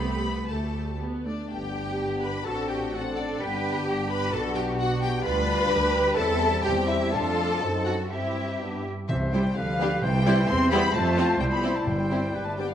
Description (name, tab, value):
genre	quick classical-period movement for symphony orchestra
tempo	112-133 BPM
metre	2/4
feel	rubato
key	G major, C major from 5.3 s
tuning	A4 = 441 Hz
part	warm studio violin section	melody	0.0-12.7 s	D5 to C6	-32 LUFS	left 6 dB	none
part	rich studio violin section	second line	0.0-12.7 s	D4 to C5	-34 LUFS	left 2 dB	none
part	warm studio viola section	accompaniment	0.0-12.7 s	G3 to B4	-30 LUFS	right 1 dB	none
part	rich studio double bass section	bass	0.0-12.7 s	G1 to G2	-30 LUFS	right 2 dB	none
part	warm studio cello section	bass	0.0-12.7 s	E3 to B4	-32 LUFS	right 2 dB	none
part	warm French horn section	sustained chords	1.5-12.7 s	G3 to G4	-32 LUFS	left 3 dB	none
part	silver concert flute	second line	9.1-12.7 s	E5 to C6	-33 LUFS	left 3 dB	none
part	warm clarinet	second line	9.1-12.7 s	E4 to G4	-34 LUFS	left 2 dB	none
part	warm oboe	second line	9.1-12.6 s	B4 to C5	-34 LUFS	right 1 dB	none
part	mellow bassoon	accompaniment	9.1-12.7 s	C3 to G3	-34 LUFS	right 1 dB	none
part	timpani	percussion	9.1-12.3 s	G2 to C3	-32 LUFS	left 1 dB	none
room	wet recital hall reverb, RT60 1.6 s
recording	dark, warm production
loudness	-23 LUFS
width	side -10 dB against mid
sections	0.0-1.5 A section; 1.5-9.1 B section; 9.1-12.7 C section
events	none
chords	0.5 Dsus4; 1.0 D5; 1.5 G; 2.5 D7/A; 3.4 G; 4.3 Gmaj9/B; 5.3 G7/D; 6.2 C/E; 7.1 Dm/F; 7.6 F#dim7; 8.1 C/G; 8.6 G; 9.1 C; 9.6 G7/D; 10.0 C; 10.5 C/E; 10.9 F; 11.4 C; 11.9 C/G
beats	| 0.49 1.00 | 1.52 2.00 | 2.46 2.93 | 3.42 3.89 | 4.34 4.79 | 5.25 5.71 | 6.17 6.63 | 7.13 7.62 | 8.11 8.61 | 9.09 9.56 | 10.03 10.49 | 10.95 11.40 | 11.87 12.35